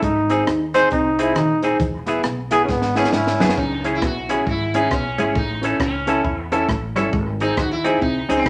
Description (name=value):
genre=ska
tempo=135 BPM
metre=4/4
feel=swing 62% on 8ths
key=C# minor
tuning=A4 = 440 Hz
part: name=brilliant trombone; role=melody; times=0.0-3.4 s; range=B3 to B#4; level=-21 LUFS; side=equal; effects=none
part: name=semi-hollow electric guitar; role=riff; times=0.0-8.5 s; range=D#3 to E4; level=-28 LUFS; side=equal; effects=spring reverb
part: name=upright bass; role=bass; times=0.0-8.5 s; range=D#1 to E2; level=-31 LUFS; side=equal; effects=none
part: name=compact cocktail drum kit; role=drums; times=0.0-8.5 s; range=hi-hat, kick drum, rim click, snare drum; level=-29 LUFS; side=equal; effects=dub echo
part: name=cabasa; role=percussion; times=0.0-3.5 s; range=none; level=-53 LUFS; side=equal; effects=none
part: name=semi-hollow electric guitar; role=accompaniment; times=0.3-8.4 s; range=B3 to A4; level=-29 LUFS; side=equal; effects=none
part: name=dark upright piano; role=stabs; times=0.3-8.4 s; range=B3 to A4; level=-25 LUFS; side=equal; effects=none
part: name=sitar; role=melody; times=3.1-8.5 s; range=B#3 to F#4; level=-28 LUFS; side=equal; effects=none
room=wet studio reverb, RT60 0.7 s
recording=none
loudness=-20 LUFS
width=mono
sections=0.0-3.6 A section; 3.6-8.5 B section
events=trombone solo 0.0-3.6; drum fill 2.7-3.6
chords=0.0 G#; 1.8 E; 3.6 C#m; 5.4 A; 7.1 G#